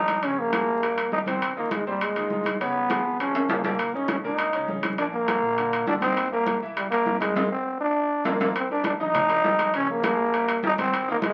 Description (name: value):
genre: latin, salsa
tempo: 202 BPM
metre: 4/4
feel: straight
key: Eb major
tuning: A4 = 440 Hz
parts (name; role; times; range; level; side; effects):
- growling trombone; melody; 0.0-11.3 s; G3 to Eb4; -26 LUFS; equal; none
- bright grand piano; accompaniment; 0.0-11.3 s; Bb2 to Fb5; -36 LUFS; equal; none
- round analog bass; bass; 0.0-11.3 s; Gb1 to Bb2; -45 LUFS; equal; none
- congas; percussion; 0.1-11.3 s; none; -35 LUFS; equal; none
- timbales; percussion; 0.1-11.3 s; none; -32 LUFS; equal; none
room: wet club reverb, RT60 0.5 s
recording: very old 78 rpm record, vinyl crackle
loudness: -25 LUFS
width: mono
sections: 0.0-8.6 A section; 8.6-11.3 A section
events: drum fill 3.3-3.8, 7.7-8.6; band accent 7.4-8.6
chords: 0.2 Bbm7; 0.8 Eb; 1.4 Ab6; 2.6 Db7; 3.8 Gb6; 5.0 Bb; 6.2 Eb; 6.8 C7; 7.4 F5; 8.0 Bb; 8.6 Eb; 9.7 Bbm7; 10.3 Eb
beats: | 0.23 0.53 0.82 1.12 | 1.42 1.72 2.01 2.31 | 2.61 2.90 3.20 3.50 | 3.79 4.09 4.39 4.69 | 4.98 5.28 5.58 5.88 | 6.17 6.47 6.77 7.07 | 7.37 7.66 7.96 8.26 | 8.56 8.85 9.15 9.45 | 9.75 10.04 10.34 10.64 | 10.94 11.23